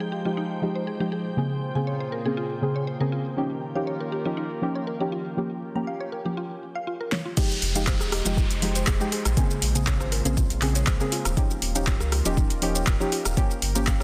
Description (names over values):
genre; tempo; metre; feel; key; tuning
deep house; 120 BPM; 4/4; swing 53% on 16ths; F minor; A4 = 440 Hz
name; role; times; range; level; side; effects
warbly tape-like pad; sustained chords; 0.0-14.0 s; Bb2 to C5; -38 LUFS; equal; chorus, built-in reverb, sidechain pumping
mallet-like synth pluck; arpeggios; 0.0-14.0 s; Eb4 to Bb5; -38 LUFS; equal; chorus, vintage 12-bit sampler grit, sidechain pumping, digital delay
deep mellow chord stab; stabs; 0.0-14.0 s; Db3 to Ab4; -30 LUFS; equal; chorus, vintage 12-bit sampler grit, sidechain pumping, digital delay
soft string machine; texture; 0.0-6.9 s; G5 to G6; -47 LUFS; equal; ensemble chorus, sidechain pumping
deep house drum kit; drums; 7.1-14.0 s; crash cymbal, handclaps, hi-hat, rim click, shaker, snare drum; -31 LUFS; equal; small room reverb
electronic kick drum; drums; 7.4-14.0 s; none; -26 LUFS; equal; small room reverb
downlifter; sound effects; 7.4-11.4 s; none; -38 LUFS; equal; none
round analog bass; bass; 7.6-14.0 s; Eb1 to Db2; -29 LUFS; equal; sidechain pumping
room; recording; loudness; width
moderate lush hall reverb, RT60 2.1 s; dense, heavily limited modern master; -26 LUFS; mono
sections
0.0-7.4 A section; 7.4-14.0 B section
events
drum fill 7.1; drop 7.4-14.0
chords
0.0 Fm9; 1.1 Bbm9; 3.1 Eb9; 5.4 Gm7b5; 7.4 Fm9; 9.1 Bbm9; 11.1 Eb9; 13.4 Gm7b5